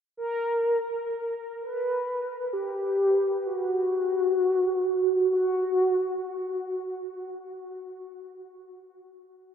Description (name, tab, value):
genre	ambient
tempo	free time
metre	none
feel	none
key	unclear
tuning	A4 = 440 Hz
part	mellow horn-like synth lead	melody	0.2-6.7 s	F#4 to B4	-25 LUFS	equal	analog chorus, tape echo
room	wet huge ambient reverb, RT60 7.6 s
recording	dark, warm production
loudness	-24 LUFS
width	side -8 dB against mid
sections	0.0-9.5 A section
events	fade-in on soft synth lead 0.0-9.5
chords	none